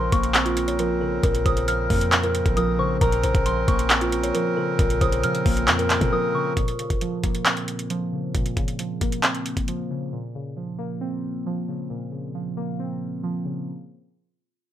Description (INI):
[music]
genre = hip hop, trap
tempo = 135 BPM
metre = 4/4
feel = half-time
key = Bb minor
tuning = A4 = 442 Hz
[part]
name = kalimba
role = melody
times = 0.0-6.3 s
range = F4 to Db5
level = -26 LUFS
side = equal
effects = low-pass filter, analog delay
[part]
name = soft synth bell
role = second line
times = 0.0-6.6 s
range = Bb5 to F6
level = -30 LUFS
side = equal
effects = chorus, phaser, analog delay
[part]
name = muted felt-like synth keys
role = accompaniment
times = 0.0-13.7 s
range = Bb2 to C4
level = -28 LUFS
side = equal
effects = chorus, phaser, low-pass filter
[part]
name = accordion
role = sustained chords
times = 0.0-6.5 s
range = Db3 to Bb4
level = -30 LUFS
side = right 1 dB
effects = none
[part]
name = clean 808-style bass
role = bass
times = 0.0-6.1 s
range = Bb1 to Db3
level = -26 LUFS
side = equal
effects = none
[part]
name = trap drum kit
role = drums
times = 0.1-9.8 s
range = handclaps, hi-hat, kick drum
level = -22 LUFS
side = equal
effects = none
[sound]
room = light reverb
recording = dry, gritty hardware recording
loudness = -21 LUFS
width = side -11 dB against mid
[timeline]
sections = 0.0-6.6 A section; 6.6-13.7 B section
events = break 6.1-6.6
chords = 0.0 Bbmadd9